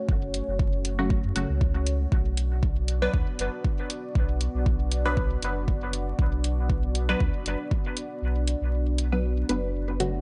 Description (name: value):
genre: dub techno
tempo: 118 BPM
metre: 4/4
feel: swing 55% on 16ths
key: unclear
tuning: A4 = 441 Hz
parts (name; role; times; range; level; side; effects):
- dark analog pad; sustained chords; 0.0-10.2 s; A3 to D5; -37 LUFS; equal; chorus, sidechain pumping
- pure sine sub bass; bass; 0.1-10.2 s; F#1 to F#2; -30 LUFS; equal; tube saturation, sidechain pumping
- electronic kick drum; drums; 0.1-7.8 s; none; -28 LUFS; equal; overdrive
- electronic hi-hat; drums; 0.3-10.1 s; none; -36 LUFS; equal; none
- filtered dub chord stab; stabs; 1.0-10.2 s; C#3 to B4; -33 LUFS; equal; phaser, sidechain pumping, dub echo
room: little or no reverb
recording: echo-heavy mix, vinyl crackle, nothing above 10.6 kHz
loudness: -26 LUFS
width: mono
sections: 0.0-10.2 A section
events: kick drops out 8.2-10.2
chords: 0.0 F#m; 2.1 Bm